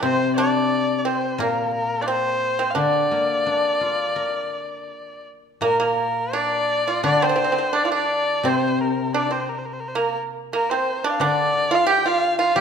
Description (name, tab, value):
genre	chinese traditional, Chinese chamber ensemble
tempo	87 BPM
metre	4/4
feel	rubato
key	D jue mode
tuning	A4 = 440 Hz
part	rich erhu	melody	0.0-12.6 s	Bb4 to G5	-23 LUFS	left 1 dB	none
part	pipa	second line	0.0-12.6 s	Bb3 to G4	-23 LUFS	right 3 dB	none
part	guzheng	accompaniment	0.0-12.6 s	Bb2 to Bb4	-25 LUFS	left 3 dB	none
room	wet recital hall reverb, RT60 1.4 s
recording	none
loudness	-19 LUFS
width	side -7 dB against mid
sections	0.0-5.6 A section; 5.6-12.6 B section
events	none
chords	none